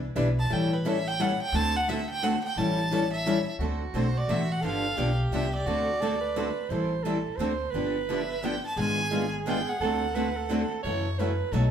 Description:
acoustic string swing (jazz manouche); 174 BPM; 3/4; swing 62% on 8ths; D mixolydian; A4 = 440 Hz
upright bass; bass; 0.0-11.7 s; G1 to F#2; -30 LUFS; equal
picked steel-string acoustic guitar; accompaniment; 0.2-11.6 s; B2 to A4; -32 LUFS; left 4 dB
picked steel-string acoustic guitar; accompaniment; 0.2-11.6 s; B2 to B4; -32 LUFS; right 1 dB
clear violin; melody; 0.4-10.7 s; B4 to A5; -30 LUFS; right 1 dB
growling soprano saxophone; second line; 3.6-11.7 s; F#4 to C#5; -32 LUFS; right 7 dB
wet large studio reverb, RT60 1.0 s; band playing live in one room; -25 LUFS; side -8 dB against mid
0.0-3.6 A section; 3.6-11.7 B section
violin solo 0.0-3.6
0.0 Em7; 0.5 A7; 1.5 D7; 2.6 A7; 3.6 D7; 4.6 G7; 5.7 D7; 6.7 Am7; 7.4 D7; 7.7 G7; 8.8 G#dim7; 9.8 D7; 10.8 F#m7
0.16 | 0.51 0.85 1.19 | 1.54 1.88 2.22 | 2.57 2.91 3.25 | 3.60 3.94 4.29 | 4.63 4.98 5.32 | 5.67 6.01 6.36 | 6.70 7.05 7.39 | 7.74 8.08 8.43 | 8.77 9.12 9.46 | 9.81 10.15 10.50 | 10.84 11.19 11.53

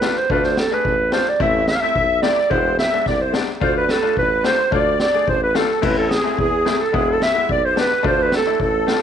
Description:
klezmer; 108 BPM; 2/4; straight; D dorian sharp4; A4 = 440 Hz
mellow clarinet; melody; 0.0-9.0 s; G#4 to F5; -18 LUFS; right 3 dB
bright upright piano; accompaniment; 0.0-9.0 s; G#3 to G#4; -24 LUFS; left 12 dB
warm tuba; bass; 0.0-8.9 s; E1 to E2; -24 LUFS; equal
street-band drum kit; drums; 0.0-9.0 s; crash cymbal, kick drum, snare drum; -24 LUFS; equal
musette accordion; second line; 1.4-9.0 s; G#4 to E5; -25 LUFS; left 11 dB
light reverb, studio reverb; 1960s-style stereo; -16 LUFS; side -8 dB against mid
0.0-5.8 A section; 5.8-9.0 A section
0.0 Dm; 1.4 Am; 2.5 E; 3.6 Dm; 5.8 Am; 6.9 E; 8.0 Dm
| 0.30 0.85 | 1.40 1.96 | 2.51 3.06 | 3.62 4.17 | 4.72 5.28 | 5.83 6.38 | 6.94 7.49 | 8.04 8.60

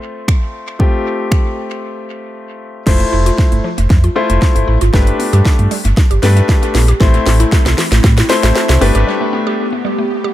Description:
dance-pop; 116 BPM; 4/4; straight; A4 = 440 Hz
clear grand piano; accompaniment; 0.0-9.6 s; A3 to C5; -18 LUFS; left 3 dB; sidechain pumping, dub echo
house drum kit; drums; 0.3-9.1 s; crash cymbal, finger snaps, hi-hat, kick drum, snare drum; -14 LUFS; equal; overdrive, dub echo
mallet-like synth pluck; arpeggios; 2.9-10.3 s; E3 to G4; -22 LUFS; right 2 dB; chorus, sidechain pumping, dub echo
sub bass with octave; bass; 2.9-9.0 s; F1 to A2; -12 LUFS; equal; sidechain pumping
airy breathy pad; sustained chords; 7.5-10.3 s; A3 to G4; -21 LUFS; equal; chorus, sidechain pumping
digital ambience; echo-heavy mix; -10 LUFS; side -13 dB against mid
0.0-2.9 A section; 2.9-10.3 B section
break 1.8-2.9, 9.1-10.3; build-up 2.9-10.3; drum fill 2.9-9.1
0.0 F; 2.9 Fmaj7; 4.9 Gadd9; 7.0 Am; 8.8 Gadd9
0.28 | 0.80 1.32 1.83 2.35 | 2.87 3.38 3.90 4.42 | 4.94 5.45 5.97 6.49 | 7.00 7.52 8.04 8.56 | 9.07 9.59 10.11

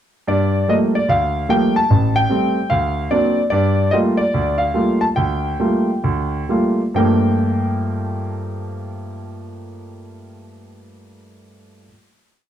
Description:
solo jazz; 127-148 BPM; 4/4; swing 64% on 8ths; G minor; A4 = 439 Hz
clear concert grand piano; solo; 0.3-11.9 s; A1 to A5; -16 LUFS; equal
moderate large studio reverb, RT60 1.1 s; dark, warm production; -16 LUFS; side -10 dB against mid
0.3-6.9 A section; 6.9-10.7 final chord
slowing down 3.5-6.9
0.3 Gm9; 1.9 Am7; 2.7 D7alt; 3.5 Gm9
| 0.27 0.68 1.08 1.49 | 1.89 2.30 2.70 3.10 | 3.51 3.92 4.32 4.74 | 5.16 5.58 6.03 6.48 | 6.94 7.41 7.89 8.36 | 8.83 9.31 9.78 10.25

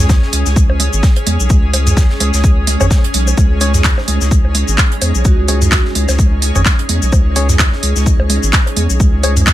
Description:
minimal techno; 128 BPM; 4/4; swing 56% on 16ths; A4 = 440 Hz
saturated sub bass; bass; 0.0-9.5 s; G#1 to E2; -14 LUFS; equal; sidechain pumping
flickering grainy texture; texture; 0.0-9.5 s; G#3 to G#4; -27 LUFS; right 2 dB; built-in reverb, sidechain pumping
granular cloud pad; texture; 0.0-9.5 s; C#4 to G#5; -23 LUFS; left 1 dB; built-in reverb, sidechain pumping
electronic kick drum; drums; 0.1-9.5 s; -12 LUFS; equal; overdrive
minimal click drum kit; drums; 0.1-9.5 s; cabasa, handclaps, hi-hat; -17 LUFS; equal
tight funk drum kit; drums; 0.1-9.5 s; hi-hat, shaker, snare drum; -28 LUFS; right 2 dB; high-pass filter on hats, high-pass filter on snare, high-pass filter on perc, high-pass filter on room
electronic bongos, congas and toms; percussion; 0.1-9.5 s; -20 LUFS; right 2 dB; overdrive, digital delay
percussive organ stab; stabs; 2.8-9.4 s; C#4 to C#5; -22 LUFS; left 4 dB; chorus, digital delay
vibraphone with medium mallets; melody; 5.2-5.9 s; F#4; -24 LUFS; right 6 dB; digital delay
little or no reverb; -10 LUFS; side -14 dB against mid
0.0-9.5 A section
0.0 C#5
0.09 0.56 1.03 | 1.50 1.97 2.44 2.91 | 3.38 3.84 4.31 4.78 | 5.25 5.72 6.19 6.66 | 7.12 7.59 8.06 8.53 | 9.00 9.47

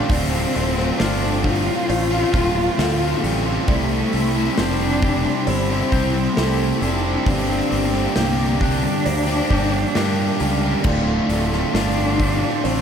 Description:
post-rock; 67 BPM; 4/4; straight; D minor; A4 = 441 Hz
warm cello; melody; 0.0-12.8 s; G3 to F4; -23 LUFS; left 2 dB; diffuse ambient delay
hand-pumped harmonium; sustained chords; 0.0-12.8 s; E4 to C6; -35 LUFS; left 2 dB
felt-muted upright piano; arpeggios; 0.0-12.8 s; A4 to D5; -32 LUFS; right 4 dB; diffuse ambient delay
twangy electric guitar; arpeggios; 0.0-12.8 s; D2 to C5; -32 LUFS; left 4 dB; lush chorus, diffuse ambient delay
overdriven electric guitar; riff; 0.0-12.8 s; D2 to C5; -24 LUFS; right 11 dB
thick fuzz guitar; riff; 0.0-12.8 s; D2 to C5; -26 LUFS; left 11 dB; distortion
fuzz fingered electric bass; bass; 0.1-12.8 s; D1 to G2; -23 LUFS; equal; overdrive
big rock drum kit; drums; 0.1-12.8 s; crash cymbal, hi-hat, kick drum, snare drum; -26 LUFS; equal
moderate lush hall reverb, RT60 2.9 s; dreamy mix soaked in reverb; -17 LUFS; side -7 dB against mid
0.0-12.8 A section
0.0 Dm7; 3.7 C; 7.3 Gm7; 10.9 Dm7
| 0.10 1.00 1.89 2.79 | 3.69 4.58 5.48 6.37 | 7.27 8.16 9.06 9.96 | 10.85 11.75 12.64

